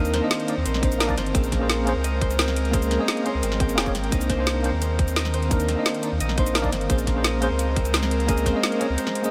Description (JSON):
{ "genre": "liquid drum and bass", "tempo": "173 BPM", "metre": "4/4", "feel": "straight", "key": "unclear", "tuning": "A4 = 440 Hz", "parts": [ { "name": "tine electric piano", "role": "accompaniment", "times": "0.0-9.3 s", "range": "Bb3 to Eb5", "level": "-29 LUFS", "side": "equal", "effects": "medium tremolo, delay" }, { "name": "airy breathy pad", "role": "sustained chords", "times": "0.0-9.3 s", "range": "Eb3 to Bb4", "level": "-31 LUFS", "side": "equal", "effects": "chorus" }, { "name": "concert harp", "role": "arpeggios", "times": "0.0-9.3 s", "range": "C4 to G5", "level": "-34 LUFS", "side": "equal", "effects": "delay" }, { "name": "warm sub bass", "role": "bass", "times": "0.0-9.0 s", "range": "F1 to Eb2", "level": "-28 LUFS", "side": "equal", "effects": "none" }, { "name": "garage drum kit", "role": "drums", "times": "0.1-9.3 s", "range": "hi-hat, shaker, snare drum", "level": "-30 LUFS", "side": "equal", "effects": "none" }, { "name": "electronic kick drum", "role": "drums", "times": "0.8-8.5 s", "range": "none", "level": "-26 LUFS", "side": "equal", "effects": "none" } ], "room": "moderate huge ambient reverb, RT60 7.5 s", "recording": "dreamy mix soaked in reverb", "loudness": "-23 LUFS", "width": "mono", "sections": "0.0-9.3 A section", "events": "none", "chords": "0.0 Cm9; 1.3 Bbm9; 4.1 Cm9; 6.9 Bbm9" }